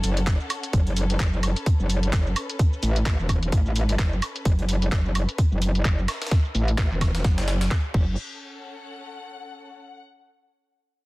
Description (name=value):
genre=bass house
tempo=129 BPM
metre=4/4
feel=swing 58% on 16ths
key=F# minor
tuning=A4 = 441 Hz
part: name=metallic wobble bass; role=bass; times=0.0-8.2 s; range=E1 to A1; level=-23 LUFS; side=equal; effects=chorus, overdrive, sidechain pumping
part: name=breakbeat sampler-style drum kit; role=drums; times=0.0-7.8 s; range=hi-hat, snare drum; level=-36 LUFS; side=equal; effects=sidechain pumping on hats, high-pass filter on hats, high-pass filter on snare, high-pass filter on room
part: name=garage drum kit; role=drums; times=0.0-8.1 s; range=crash cymbal, handclaps, hi-hat, shaker, woodblock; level=-31 LUFS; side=right 1 dB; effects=low-pass filter on hats, low-pass filter on perc, soft clipping on snare, low-pass filter on snare, low-pass filter on cymbals
part: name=warm symphonic string section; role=texture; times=0.0-10.0 s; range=C#4 to F#5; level=-39 LUFS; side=left 3 dB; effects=sidechain pumping
part: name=electronic kick drum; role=drums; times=0.3-8.1 s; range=none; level=-21 LUFS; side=equal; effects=none
room=digital ambience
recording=dense, heavily limited modern master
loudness=-21 LUFS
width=side -21 dB against mid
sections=0.0-8.2 A section; 8.2-10.0 B section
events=fade-out on string section 0.0-8.2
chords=0.0 F#m